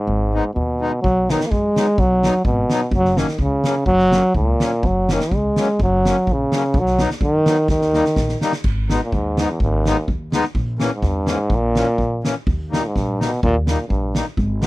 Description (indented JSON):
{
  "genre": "alpine folk, alpine dance band",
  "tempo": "126 BPM",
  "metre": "2/4",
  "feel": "swing 54% on 8ths, rubato",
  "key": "B major, G# harmonic minor from 8.7 s",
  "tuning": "A4 = 439 Hz",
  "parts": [
    { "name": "clear euphonium", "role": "melody", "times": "0.0-14.7 s", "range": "D#2 to A#3", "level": "-18 LUFS", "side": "equal", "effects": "none" },
    { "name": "upright bass", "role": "bass", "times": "0.1-14.7 s", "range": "F#1 to F#2", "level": "-22 LUFS", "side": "equal", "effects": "none" },
    { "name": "accordion", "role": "accompaniment", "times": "0.3-14.7 s", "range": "E3 to D#4", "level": "-22 LUFS", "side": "left 3 dB", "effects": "none" },
    { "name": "loose indie drum kit", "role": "drums", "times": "1.0-14.7 s", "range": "crash cymbal, kick drum, snare drum", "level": "-23 LUFS", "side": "equal", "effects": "none" }
  ],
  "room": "light reverb",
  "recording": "none",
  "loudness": "-16 LUFS",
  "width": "side -19 dB against mid",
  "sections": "0.0-1.0 A section; 1.0-8.7 B section; 8.7-14.7 A section",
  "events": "drum fill 7.7-8.7",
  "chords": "0.0 G#m; 1.0 B; 2.9 F#; 6.7 B; 7.7 D#; 8.7 G#m; 10.6 A#dim; 12.5 D#"
}